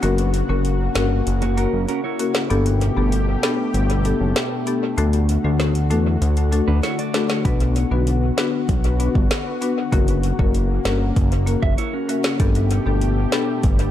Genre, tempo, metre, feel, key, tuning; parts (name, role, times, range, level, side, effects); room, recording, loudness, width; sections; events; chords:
dancehall; 97 BPM; 4/4; straight; A4 = 440 Hz
marimba with medium mallets; accompaniment; 0.0-13.5 s; A3 to B4; -23 LUFS; left 4 dB; sidechain pumping, dub echo
lush unison pad; sustained chords; 0.0-13.9 s; B2 to G4; -27 LUFS; equal; chorus, sidechain pumping
fat analog bass; bass; 0.0-13.9 s; F#1 to E2; -20 LUFS; equal
afro-pop drum kit; drums; 0.0-13.9 s; hi-hat, kick drum, rim click, snare drum; -23 LUFS; equal; overdrive, dub echo
downlifter; sound effects; 0.0-2.5 s; -46 LUFS; right 1 dB
mellow electric guitar; arpeggios; 1.4-2.5, 6.7-7.4, 11.6-12.4 s; A#3 to E5; -30 LUFS; right 6 dB; dub echo
little or no reverb; echo-heavy mix; -17 LUFS; side -11 dB against mid
0.0-13.9 A section
break 0.0-7.5; drum fill 6.8-7.5
0.0 F#; 2.5 Gadd9; 5.0 D; 7.5 Bm; 9.9 F#; 12.4 Gadd9